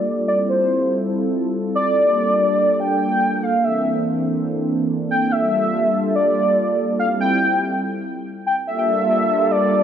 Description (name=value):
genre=IDM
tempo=143 BPM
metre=4/4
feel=straight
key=G dorian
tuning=A4 = 440 Hz
part: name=warm velvety synth lead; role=melody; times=0.0-9.8 s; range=C5 to G5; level=-18 LUFS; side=equal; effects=chorus, tape echo
part: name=warm analog pad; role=sustained chords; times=0.0-9.8 s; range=E3 to A4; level=-21 LUFS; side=right 1 dB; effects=chorus
room=wet echo chamber reverb, RT60 1.7 s, digital ambience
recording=none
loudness=-17 LUFS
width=side -9 dB against mid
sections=0.0-8.7 A section; 8.7-9.8 B section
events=filter sweep on analog synth pad 0.0-8.7; break 7.8-8.7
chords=0.3 Fmaj9; 2.0 Gm9; 3.6 C13; 5.3 Gm9; 7.0 Fmaj9; 8.7 Gm9